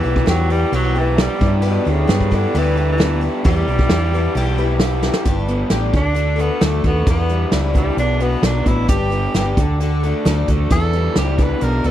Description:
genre	folk rock and heartland rock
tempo	132 BPM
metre	4/4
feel	straight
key	E minor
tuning	A4 = 440 Hz
part	bright tenor saxophone	melody	0.0-11.9 s	B2 to B4	-23 LUFS	equal	none
part	picked twelve-string acoustic guitar	accompaniment	0.0-11.9 s	B2 to B4	-25 LUFS	left 7 dB	none
part	raw garage guitar	riff	0.0-11.9 s	E2 to G4	-23 LUFS	right 1 dB	overdrive, spring reverb
part	hollow-body short-scale fingered electric bass	bass	0.0-11.9 s	G1 to G2	-19 LUFS	equal	none
part	soft brush drum kit	drums	0.0-11.9 s	hi-hat, kick drum, snare drum	-19 LUFS	equal	none
room	small room ambience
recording	none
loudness	-15 LUFS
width	side -12 dB against mid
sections	0.0-5.3 A section; 5.3-11.9 B section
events	drum fill 5.0; tenor saxophone solo 5.3-11.9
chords	0.0 Em; 1.4 G6; 3.5 Em; 5.3 G; 5.9 D; 7.1 Em7; 8.0 Bm; 8.9 G; 9.6 D; 10.7 Em7

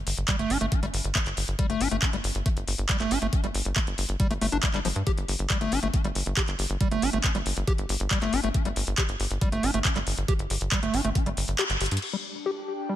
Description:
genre	psychedelic trance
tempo	138 BPM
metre	4/4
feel	straight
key	unclear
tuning	A4 = 440 Hz
part	tight sequencer bass	bass	0.0-12.0 s	G1 to G2	-29 LUFS	equal	none
part	drum and bass drum kit	drums	0.1-12.1 s	crash cymbal, handclaps, hi-hat	-30 LUFS	equal	none
part	overdriven acid bass	riff	0.3-13.0 s	F3 to G4	-30 LUFS	moving between left 7 dB and right 6 dB	auto-pan, sidechain pumping, ping-pong delay
part	electronic kick drum	drums	0.3-11.2 s	none	-26 LUFS	equal	overdrive
part	airy breathy pad	texture	12.2-13.0 s	D4 to G5	-35 LUFS	left 1 dB	chorus, sidechain pumping
room	light reverb, digital ambience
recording	none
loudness	-24 LUFS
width	side -12 dB against mid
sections	0.0-12.0 A section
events	kick drops out 11.6-12.0; band accent 11.6; drum fill 11.8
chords	0.0 G5

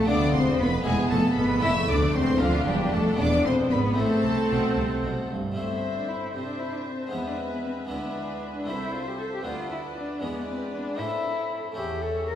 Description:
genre	classical, baroque-style concerto movement with solo episodes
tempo	77 BPM (dotted quarters)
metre	6/8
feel	straight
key	A minor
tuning	A4 = 440 Hz
part	dark cello	melody	0.0-12.4 s	F3 to Bb4	-27 LUFS	left 1 dB	none
part	warm symphonic violin section	melody	0.0-12.4 s	E5 to E6	-36 LUFS	left 2 dB	none
part	rich studio violin section	second line	0.0-12.4 s	F4 to E5	-34 LUFS	left 2 dB	none
part	harpsichord	accompaniment	0.0-12.4 s	C2 to A4	-33 LUFS	left 1 dB	none
part	warm symphonic viola section	accompaniment	0.0-12.4 s	A3 to C5	-32 LUFS	right 1 dB	none
part	dark symphonic cello section	bass	0.0-12.4 s	C2 to C3	-33 LUFS	right 2 dB	none
part	warm studio double bass section	bass	0.0-5.6 s	E1 to D2	-30 LUFS	right 2 dB	none
room	wet recital hall reverb, RT60 1.8 s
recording	heard from further back in the room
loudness	-23 LUFS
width	side -10 dB against mid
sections	0.0-5.6 A section; 5.6-12.4 B section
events	none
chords	0.1 Bm7b5; 0.9 E; 1.6 Dm/F; 3.2 E; 4.0 Am; 7.1 E; 7.9 E7/D; 8.7 Am/C; 9.5 Dm6; 10.2 E7; 11.0 Am; 11.8 A/E

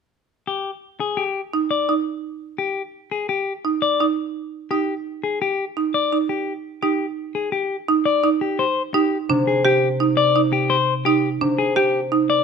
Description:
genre	classical, minimalist pattern music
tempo	170 BPM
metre	6/4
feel	straight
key	unclear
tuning	A4 = 440 Hz
part	clean electric guitar	melody	0.5-12.4 s	G4 to D5	-21 LUFS	left 6 dB	none
part	buzzing marimba with hard mallets	arpeggios	1.5-12.3 s	D4 to G4	-21 LUFS	right 6 dB	none
part	concert harp	accompaniment	9.3-12.4 s	C3	-23 LUFS	left 1 dB	none
room	moderate large studio reverb, RT60 1.0 s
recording	none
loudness	-19 LUFS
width	side -6 dB against mid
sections	0.1-12.4 A section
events	none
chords	0.1 Eb; 8.6 Abmaj7 (rootless)

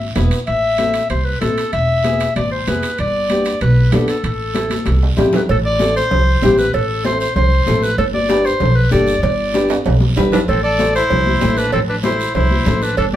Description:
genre	latin, cumbia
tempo	192 BPM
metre	4/4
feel	straight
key	A minor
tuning	A4 = 440 Hz
part	clear clarinet	melody	0.0-13.0 s	G4 to E5	-18 LUFS	left 1 dB	none
part	upright bass	bass	0.0-13.2 s	E1 to C2	-18 LUFS	right 1 dB	none
part	nylon-string guitar	accompaniment	0.1-12.9 s	B3 to C5	-19 LUFS	left 1 dB	none
part	congas	percussion	0.2-13.2 s	none	-23 LUFS	left 3 dB	none
part	guiro	percussion	0.2-13.2 s	none	-32 LUFS	right 4 dB	none
part	timbales and cowbell	percussion	0.2-13.1 s	none	-24 LUFS	right 5 dB	none
part	bright trumpet	second line	10.3-13.2 s	C4 to A4	-24 LUFS	equal	none
room	wet studio reverb, RT60 0.6 s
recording	band playing live in one room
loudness	-13 LUFS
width	side -12 dB against mid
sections	0.0-5.5 A section; 5.5-13.2 B section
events	drum fill 4.5-5.5, 9.7-10.5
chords	0.5 Am; 1.7 E; 3.0 G; 4.2 Am; 8.0 G; 10.5 Am

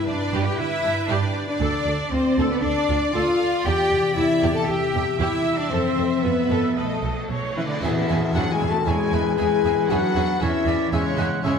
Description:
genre	cinematic, heroic adventure film score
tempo	117 BPM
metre	4/4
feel	straight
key	G mixolydian, E mixolydian from 7.8 s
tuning	A4 = 440 Hz
part	warm symphonic violin section	melody	0.0-11.6 s	A4 to A5	-32 LUFS	left 4 dB	none
part	clear symphonic violin section	second line	0.0-11.5 s	A4 to A5	-33 LUFS	left 2 dB	none
part	clear symphonic viola section	accompaniment	0.0-11.5 s	B3 to E5	-30 LUFS	right 2 dB	none
part	dark French horn section	sustained chords	0.0-11.6 s	A3 to A4	-24 LUFS	left 4 dB	none
part	concert harp	arpeggios	0.0-11.6 s	G2 to E5	-32 LUFS	left 5 dB	none
part	clear symphonic cello section	bass	0.0-11.6 s	C#3 to A4	-28 LUFS	right 4 dB	none
part	rich symphonic double bass section	bass	0.1-11.5 s	B1 to G2	-28 LUFS	right 4 dB	none
part	cymbal swell and tam-tam	percussion	3.7-9.9 s	none	-33 LUFS	left 1 dB	none
part	mellow flute section	second line	7.6-11.6 s	C#5 to A5	-30 LUFS	left 4 dB	none
part	warm clarinet	second line	7.6-11.6 s	G#3 to F#4	-31 LUFS	equal	none
part	warm oboe	second line	8.9-11.6 s	B4 to F#5	-31 LUFS	right 3 dB	none
room	wet concert hall reverb, RT60 1.9 s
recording	none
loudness	-19 LUFS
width	side -6 dB against mid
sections	0.0-7.8 A section; 7.8-11.6 B section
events	band accent 7.8-8.4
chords	0.0 G; 1.6 Dm; 3.7 C/E; 5.7 F; 6.8 B7; 7.8 E; 9.9 C#m/E

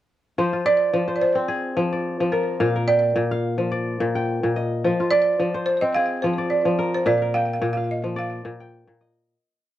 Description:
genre	west african traditional, West African string and xylophone music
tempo	108 BPM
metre	4/4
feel	swing 55% on 16ths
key	F dorian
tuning	A4 = 440 Hz
part	kora	arpeggios	0.4-9.8 s	Bb2 to G5	-22 LUFS	left 2 dB	none
part	balafon	melody	0.7-9.0 s	Bb4 to F5	-21 LUFS	right 3 dB	slapback echo
room	moderate small room reverb, RT60 0.5 s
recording	worn, warbling old tape, cassette tape, warbly pitch drift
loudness	-20 LUFS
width	side -13 dB against mid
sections	0.4-9.3 A section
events	fade-out 7.1-9.3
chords	0.4 Fm; 2.6 Bb; 4.8 Fm; 7.1 Bb

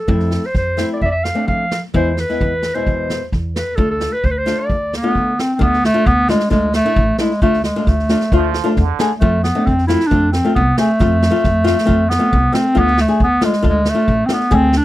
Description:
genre	klezmer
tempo	133 BPM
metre	4/4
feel	straight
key	D dorian sharp4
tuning	A4 = 439 Hz
part	warm clarinet	melody	0.0-14.8 s	G#3 to F5	-16 LUFS	equal	none
part	flamenco guitar	accompaniment	0.1-14.7 s	B2 to G#4	-19 LUFS	left 3 dB	none
part	upright bass	bass	0.1-14.8 s	A1 to F3	-19 LUFS	equal	none
part	street-band drum kit	drums	0.1-14.8 s	kick drum, snare drum	-21 LUFS	equal	none
part	trombone with plunger mute	second line	8.3-9.1 s	D3 to F3	-22 LUFS	right 14 dB	none
room	little or no reverb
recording	dry, close 1970s-style studio recording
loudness	-13 LUFS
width	side -15 dB against mid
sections	0.0-5.6 A section; 5.6-14.8 B section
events	speeding up 0.0-14.8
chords	0.0 F; 1.9 E; 3.8 Dm; 9.2 F; 12.8 Dm

